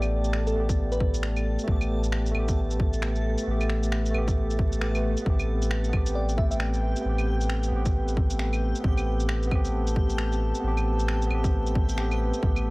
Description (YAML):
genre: future garage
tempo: 134 BPM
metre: 4/4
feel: swing 61% on 16ths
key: A minor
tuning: A4 = 440 Hz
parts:
  - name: tine electric piano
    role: accompaniment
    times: 0.0-12.7 s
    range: A3 to B4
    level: -32 LUFS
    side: right 1 dB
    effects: medium tremolo, sidechain pumping, tape echo
  - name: dark analog pad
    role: sustained chords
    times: 0.0-12.7 s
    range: A3 to A5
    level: -34 LUFS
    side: left 1 dB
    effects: chorus, vintage 12-bit sampler grit, sidechain pumping
  - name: warm sub bass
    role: bass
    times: 0.0-12.7 s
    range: A1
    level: -26 LUFS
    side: equal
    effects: sidechain pumping
  - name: electronic shaker, claves and finger snaps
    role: drums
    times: 0.0-12.6 s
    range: none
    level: -35 LUFS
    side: equal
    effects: none
  - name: backwards swelling texture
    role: texture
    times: 0.0-12.7 s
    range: G4 to A4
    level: -41 LUFS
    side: left 1 dB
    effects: built-in reverb
  - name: bell-like FM electric piano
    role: melody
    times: 0.5-1.2, 6.2-6.6 s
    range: A4 to E5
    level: -34 LUFS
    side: equal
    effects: chorus, analog delay
  - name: electronic kick drum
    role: drums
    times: 0.7-12.5 s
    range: none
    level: -25 LUFS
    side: equal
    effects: none
  - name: swell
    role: sound effects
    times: 4.7-5.3 s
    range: none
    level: -40 LUFS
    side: left 4 dB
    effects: none
room: little or no reverb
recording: dry, gritty hardware recording, vinyl crackle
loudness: -23 LUFS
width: side -23 dB against mid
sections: 0.0-5.3 A section; 5.3-12.7 B section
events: none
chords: 0.0 Gadd9/A; 5.3 Am9